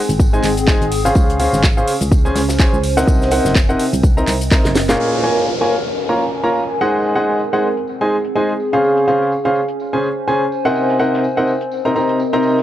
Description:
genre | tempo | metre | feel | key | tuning
piano house | 125 BPM | 4/4 | swing 56% on 16ths | unclear | A4 = 441 Hz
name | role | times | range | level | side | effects
warbly tape-like pad | texture | 0.0-12.6 s | C4 to Ab5 | -21 LUFS | equal | chorus, built-in reverb, phaser, sidechain pumping
solid FM bass | bass | 0.1-5.0 s | Gb1 to Db2 | -20 LUFS | equal | tube saturation, sidechain pumping
deep reggae drum kit | drums | 0.1-12.6 s | hi-hat, snare drum, tambourine | -32 LUFS | left 1 dB | high-pass filter on hats, low-pass filter on hats, high-pass filter on snare, low-pass filter on snare, high-pass filter on perc, low-pass filter on perc, high-pass filter on room, low-pass filter on room
house drum kit | drums | 0.1-5.0 s | handclaps, hi-hat, shaker, snare drum | -22 LUFS | equal | low-pass filter on perc, low-pass filter on hats, low-pass filter on snare
electronic kick drum | drums | 0.2-4.6 s | none | -14 LUFS | equal | none
bright baby grand piano | riff | 0.3-12.6 s | Bb2 to Bb5 | -17 LUFS | equal | sidechain pumping, analog delay
downlifter | sound effects | 5.0-8.8 s | none | -26 LUFS | equal | none
room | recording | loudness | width
small room ambience | dry, gritty hardware recording | -13 LUFS | side -12 dB against mid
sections
0.0-5.0 A section; 5.0-12.6 B section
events
drum fill 4.6-5.0; band accent 4.9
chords
0.0 Ab7; 3.1 Cm7b5; 5.0 Bbm7; 6.9 Ab7; 8.8 Dbmaj7; 10.8 Cm7b5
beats
0.20 0.68 | 1.16 1.64 2.12 2.60 | 3.08 3.56 4.04 4.51 | 5.00 5.47 5.96 6.43 | 6.92 7.39 7.88 8.36 | 8.84 9.31 9.79 10.28 | 10.76 11.23 11.71 12.20

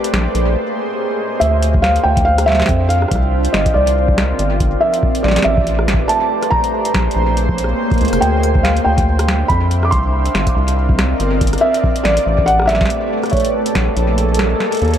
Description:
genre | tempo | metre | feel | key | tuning
IDM | 141 BPM | 4/4 | swing 56% on 16ths | unclear | A4 = 440 Hz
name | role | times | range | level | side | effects
granular cloud pad | sustained chords | 0.0-15.0 s | A3 to G5 | -20 LUFS | equal | built-in reverb
booming analog drum machine | drums | 0.0-15.0 s | hi-hat, rim click, snare drum | -22 LUFS | equal | tape echo
round analog bass | bass | 0.1-15.0 s | F1 to F2 | -16 LUFS | equal | none
felt-muted upright piano | melody | 1.4-14.6 s | Db5 to D6 | -18 LUFS | right 1 dB | analog delay
electronic kick drum | drums | 1.7-13.8 s | none | -19 LUFS | equal | none
room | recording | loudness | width
moderate spring reverb, RT60 1.8 s | echo-heavy mix | -13 LUFS | side -10 dB against mid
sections
0.0-1.4 A section; 1.4-15.0 A section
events
break 0.6-1.4; kick drops out 14.2-15.0; drum fill 14.6-15.0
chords
0.0 Bbm11; 1.4 Dm11; 3.1 Cm11; 4.8 Am11; 6.5 Bbm11; 8.2 Dm11; 9.9 Cm11; 11.6 Am11; 13.3 Bbm7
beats
0.14 0.56 0.99 | 1.41 1.84 2.26 2.69 | 3.12 3.54 3.97 4.39 | 4.82 5.24 5.67 6.09 | 6.52 6.95 7.37 7.80 | 8.22 8.65 9.07 9.50 | 9.92 10.35 10.77 11.20 | 11.62 12.05 12.48 12.90 | 13.33 13.75 14.18 14.60

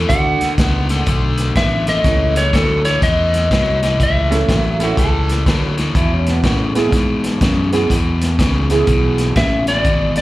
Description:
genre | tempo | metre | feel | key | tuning
electric blues shuffle | 123 BPM | 4/4 | swing 64% on 8ths | A major | A4 = 445 Hz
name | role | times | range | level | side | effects
lightly driven lead guitar | melody | 0.0-5.0, 9.4-10.2 s | A4 to F#5 | -18 LUFS | equal | slapback echo
overdriven electric guitar | riff | 0.0-10.2 s | E2 to B3 | -21 LUFS | left 4 dB | slapback echo
fingered electric bass | bass | 0.0-10.2 s | G#1 to A2 | -18 LUFS | equal | none
clear upright piano | accompaniment | 0.1-9.3 s | G#3 to A4 | -20 LUFS | right 4 dB | slapback echo
vintage drum kit | drums | 0.1-10.2 s | hi-hat, kick drum, snare drum | -19 LUFS | equal | none
electric guitar through a small old amp | second line | 4.8-6.5 s | B3 to A4 | -25 LUFS | right 4 dB | slapback echo
room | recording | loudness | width
little or no reverb | live gig heard through the venue's PA, club reverb | -13 LUFS | side -17 dB against mid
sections
0.0-10.2 A section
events
none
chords
0.1 D; 2.0 A; 6.0 E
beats
| 0.10 0.58 1.07 1.56 | 2.05 2.54 3.02 3.51 | 4.00 4.49 4.98 5.46 | 5.95 6.44 6.93 7.42 | 7.90 8.39 8.88 9.37 | 9.85

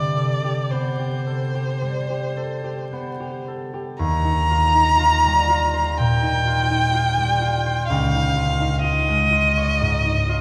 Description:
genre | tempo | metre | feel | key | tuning
classical, impressionist duo for violin and harp | 53-64 BPM | 4/4 | rubato | Eb major from 4.0 s | A4 = 444 Hz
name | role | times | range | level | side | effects
rich violin | melody | 0.0-10.4 s | C5 to Bb5 | -23 LUFS | equal | none
concert harp | accompaniment | 0.0-10.4 s | Db2 to Db5 | -24 LUFS | equal | none
room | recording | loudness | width
wet church reverb, RT60 3.6 s | recorded in a church or concert hall, vinyl crackle | -20 LUFS | mono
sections
0.0-4.0 A section; 4.0-10.4 B section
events
none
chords
0.0 C5; 4.0 Eb69; 7.9 Dbadd9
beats
0.70 1.81 2.91 | 4.00 5.00 5.98 6.93 | 7.88 8.83 9.80

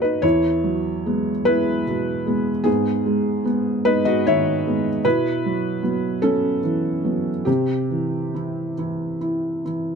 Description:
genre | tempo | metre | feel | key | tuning
neoclassical minimalist piano | 50 BPM (dotted quarters) | 6/8 | uneven beats, rubato | E major | A4 = 440 Hz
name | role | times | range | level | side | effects
felt-muted upright piano | solo | 0.0-10.0 s | E2 to E5 | -19 LUFS | equal | none
room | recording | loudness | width
light reverb | close, detailed microphones | -19 LUFS | side -6 dB against mid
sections
0.2-10.0 A section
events
none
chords
0.2 Eadd9; 2.7 G#m; 5.0 Bsus4; 7.5 C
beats
| 0.23 1.47 | 2.67 3.87 | 5.04 6.22 | 7.47 8.77

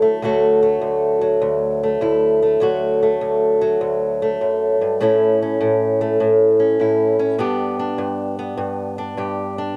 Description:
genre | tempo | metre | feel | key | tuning
blues | 100 BPM | 4/4 | swing 67% on 8ths | D major | A4 = 441 Hz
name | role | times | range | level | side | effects
fingerpicked old ladder-braced acoustic guitar | solo | 0.0-9.8 s | D2 to G4 | -18 LUFS | equal | none
room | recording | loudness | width
wet booth ambience, RT60 0.2 s | none | -18 LUFS | mono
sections
0.0-9.8 A section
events
none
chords
0.0 D; 5.0 A; 7.4 G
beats
| 0.20 0.80 1.40 2.00 | 2.60 3.20 3.80 4.40 | 5.00 5.60 6.20 6.80 | 7.40 8.00 8.59 9.19

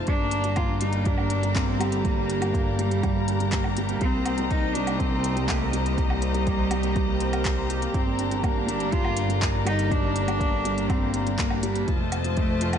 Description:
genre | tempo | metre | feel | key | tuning
piano and strings electronica | 122 BPM | 4/4 | straight | G minor | A4 = 436 Hz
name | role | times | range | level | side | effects
dark chamber string section | sustained chords | 0.0-12.8 s | F4 to Bb5 | -32 LUFS | left 2 dB | none
warm grand piano | riff | 0.0-12.8 s | F3 to C5 | -29 LUFS | equal | lush chorus, tape echo
warm studio double bass section | bass | 0.0-12.8 s | F1 to C2 | -28 LUFS | equal | sidechain pumping
dark cello | melody | 0.1-12.8 s | G3 to F4 | -29 LUFS | equal | tape echo
electronic kick drum | drums | 0.1-12.5 s | none | -27 LUFS | equal | overdrive
organic electronic drum kit | drums | 0.1-12.8 s | handclaps, hi-hat, woodblock | -34 LUFS | equal | overdrive
room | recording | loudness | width
moderate plate reverb, RT60 2.7 s | dreamy mix soaked in reverb, nothing above 10.4 kHz | -22 LUFS | side -8 dB against mid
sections
0.0-12.8 A section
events
none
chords
0.1 Gm; 4.0 Cm7; 7.9 Gm; 11.9 F7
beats
| 0.07 0.57 1.06 1.55 | 2.04 2.53 3.03 3.52 | 4.01 4.50 4.99 5.49 | 5.98 6.47 6.96 7.45 | 7.94 8.44 8.93 9.42 | 9.91 10.40 10.89 11.39 | 11.88 12.37

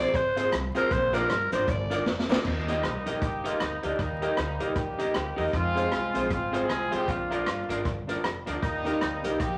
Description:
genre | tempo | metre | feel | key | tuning
ska | 155 BPM | 4/4 | swing 58% on 8ths | Eb major | A4 = 440 Hz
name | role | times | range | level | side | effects
raspy alto saxophone | melody | 0.0-2.1 s | Bb4 to D5 | -29 LUFS | equal | none
vintage hollow-body jazz guitar | accompaniment | 0.0-9.4 s | C4 to Eb5 | -33 LUFS | equal | tape echo
warm upright piano | stabs | 0.0-9.4 s | D4 to Eb5 | -38 LUFS | equal | none
upright bass | bass | 0.0-9.6 s | F1 to F2 | -37 LUFS | equal | none
vintage drum kit | drums | 0.1-9.5 s | crash cymbal, hi-hat, kick drum, rim click, snare drum | -34 LUFS | equal | tape echo
cabasa | percussion | 0.1-2.4, 8.6-9.5 s | none | -59 LUFS | equal | none
warm horn section | melody | 2.5-9.6 s | G3 to Ab4 | -34 LUFS | equal | none
room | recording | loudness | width
wet studio reverb, RT60 0.7 s | vinyl crackle | -28 LUFS | mono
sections
0.0-2.5 A section; 2.5-9.6 B section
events
alto saxophone solo 0.0-2.5; drum fill 2.1-2.5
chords
0.0 Fm; 0.9 Bb; 2.5 Eb; 5.5 Fm; 7.1 Bb; 8.6 Eb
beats
0.14 0.53 | 0.91 1.30 1.68 2.07 | 2.45 2.84 3.22 3.61 | 3.99 4.38 4.77 5.15 | 5.54 5.92 6.31 6.70 | 7.08 7.47 7.86 8.24 | 8.63 9.02 9.40

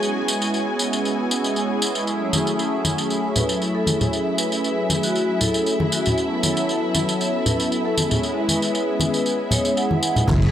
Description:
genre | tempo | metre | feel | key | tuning
nu-disco, nu disco | 117 BPM | 4/4 | straight | F# minor | A4 = 439 Hz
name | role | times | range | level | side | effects
warm analog pad | accompaniment | 0.0-10.5 s | F#3 to A4 | -23 LUFS | equal | chorus, analog delay
dark symphonic string section | sustained chords | 0.0-10.5 s | E4 to G#5 | -28 LUFS | equal | sidechain pumping
dusty soul sampler-style drum kit | drums | 0.0-10.5 s | crash cymbal, hi-hat, tambourine | -25 LUFS | equal | none
congas | percussion | 2.3-10.4 s | none | -24 LUFS | left 1 dB | none
vibraphone with medium mallets | melody | 3.4-10.3 s | F#4 to F#5 | -26 LUFS | left 1 dB | tape echo
picked electric bass | bass | 10.3-10.5 s | F#1 | -16 LUFS | equal | none
electronic kick drum | drums | 10.3-10.4 s | none | -23 LUFS | equal | none
room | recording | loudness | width
light reverb | dry, gritty hardware recording | -19 LUFS | side -10 dB against mid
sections
0.0-10.3 A section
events
none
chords
0.0 C#m7; 2.1 F#m9; 6.2 A69; 8.0 C#m7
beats
| 0.02 0.54 1.05 1.56 | 2.08 2.59 3.10 3.61 | 4.13 4.64 5.15 5.67 | 6.18 6.69 7.20 7.72 | 8.23 8.74 9.26 9.77 | 10.28

